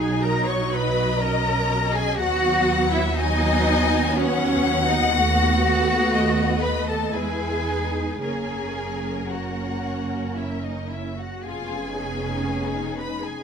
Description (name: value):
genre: classical, slow romantic movement for string orchestra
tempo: 54-62 BPM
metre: 3/4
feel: rubato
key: B major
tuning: A4 = 440 Hz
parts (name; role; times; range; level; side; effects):
- warm symphonic violin section; melody; 0.0-13.4 s; C#5 to C#6; -29 LUFS; left 5 dB; none
- warm symphonic viola section; accompaniment; 0.0-13.4 s; F#3 to E4; -27 LUFS; right 2 dB; none
- warm symphonic cello section; bass; 0.0-13.4 s; C#4 to C#5; -26 LUFS; right 1 dB; none
- warm symphonic double bass section; bass; 0.0-13.4 s; E#1 to E2; -27 LUFS; right 2 dB; none
- warm symphonic violin section; second line; 0.2-13.4 s; D#4 to G#5; -28 LUFS; left 6 dB; none
room: light reverb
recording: close, detailed microphones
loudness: -20 LUFS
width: side -7 dB against mid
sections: 0.0-13.4 A section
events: none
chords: 0.0 B; 2.2 B/D#; 5.1 B7/D#; 7.1 E; 8.2 F#; 11.4 C#7/E#